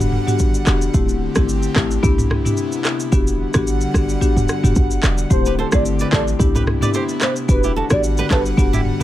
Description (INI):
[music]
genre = afrobeats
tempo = 110 BPM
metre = 4/4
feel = swing 55% on 16ths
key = E minor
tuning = A4 = 440 Hz
[part]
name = marimba with medium mallets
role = accompaniment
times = 0.0-9.0 s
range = A3 to G4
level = -22 LUFS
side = left 4 dB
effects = plate reverb
[part]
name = airy breathy pad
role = sustained chords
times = 0.0-9.0 s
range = C3 to F#5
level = -26 LUFS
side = equal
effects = chorus
[part]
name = short 808-style bass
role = bass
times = 0.0-8.9 s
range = D1 to C2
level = -19 LUFS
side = equal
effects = none
[part]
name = afro-pop drum kit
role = drums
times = 0.0-9.0 s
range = handclaps, kick drum, rim click, shaker, toms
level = -19 LUFS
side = equal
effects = none
[part]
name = warm velvety synth lead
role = melody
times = 5.3-8.4 s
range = B4 to D5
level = -24 LUFS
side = right 1 dB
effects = chorus, digital delay, plate reverb
[part]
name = flamenco guitar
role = riff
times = 5.5-9.0 s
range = E4 to D5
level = -26 LUFS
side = right 5 dB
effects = digital delay
[sound]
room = light reverb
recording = none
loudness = -15 LUFS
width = side -13 dB against mid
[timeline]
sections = 0.0-9.0 A section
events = none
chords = 0.0 Em9; 0.9 D7sus4; 2.0 Cmaj7; 3.1 Em9; 5.3 D7sus4; 6.4 Cmaj7; 7.5 Em9